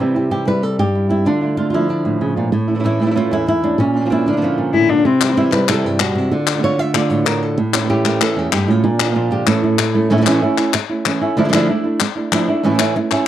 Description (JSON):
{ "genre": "flamenco", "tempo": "190 BPM", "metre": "4/4", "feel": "straight", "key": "A phrygian dominant", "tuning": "A4 = 443 Hz", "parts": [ { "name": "flamenco guitar", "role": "melody", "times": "0.0-13.3 s", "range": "E2 to E5", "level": "-16 LUFS", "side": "right 1 dB", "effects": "none" }, { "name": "flamenco guitar", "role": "stabs", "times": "0.0-13.3 s", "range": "A2 to F4", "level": "-20 LUFS", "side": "right 3 dB", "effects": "none" }, { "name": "dark cello", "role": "second line", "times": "4.7-5.3 s", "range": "C4 to E4", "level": "-16 LUFS", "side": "left 6 dB", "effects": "none" }, { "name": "palmas hand claps", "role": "percussion", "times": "5.2-13.3 s", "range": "none", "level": "-20 LUFS", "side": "left 12 dB", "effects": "none" } ], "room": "light reverb", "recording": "dry, close 1970s-style studio recording", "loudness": "-14 LUFS", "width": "side -11 dB against mid", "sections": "0.0-10.1 A section; 10.1-13.3 B section", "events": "none", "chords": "0.0 C; 1.3 Dm; 2.5 A; 3.8 Bb; 5.1 C; 6.3 Dm; 7.6 A; 8.8 Bb; 9.5 A; 11.4 Dmadd9; 12.6 A" }